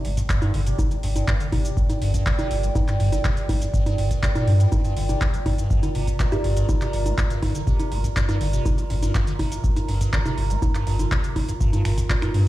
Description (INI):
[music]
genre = acid house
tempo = 122 BPM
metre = 4/4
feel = straight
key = G minor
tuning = A4 = 440 Hz
[part]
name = liquid acid bass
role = riff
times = 0.0-12.4 s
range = F2 to Bb3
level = -26 LUFS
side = equal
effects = phaser, tube saturation, lush chorus
[part]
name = saturated sub bass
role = bass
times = 0.0-12.5 s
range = G1 to G2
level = -23 LUFS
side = equal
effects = tube saturation, sidechain pumping
[part]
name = electro analog drum machine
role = drums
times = 0.0-12.4 s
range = cabasa, congas, finger snaps, handclaps, hi-hat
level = -30 LUFS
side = equal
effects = none
[part]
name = warbly tape-like pad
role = texture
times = 0.0-12.5 s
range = F4 to Bb5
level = -31 LUFS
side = right 3 dB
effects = chorus, built-in reverb, sidechain pumping
[part]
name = electronic kick drum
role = drums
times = 0.2-12.2 s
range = none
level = -22 LUFS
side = equal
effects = none
[part]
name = kalimba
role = melody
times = 6.3-6.5 s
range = G4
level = -34 LUFS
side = right 3 dB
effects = dub echo
[sound]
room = digital ambience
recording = played on a big sound system in a bare room, large studio reverb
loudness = -20 LUFS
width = side -16 dB against mid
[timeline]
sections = 0.0-12.5 A section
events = none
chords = 0.0 Gm7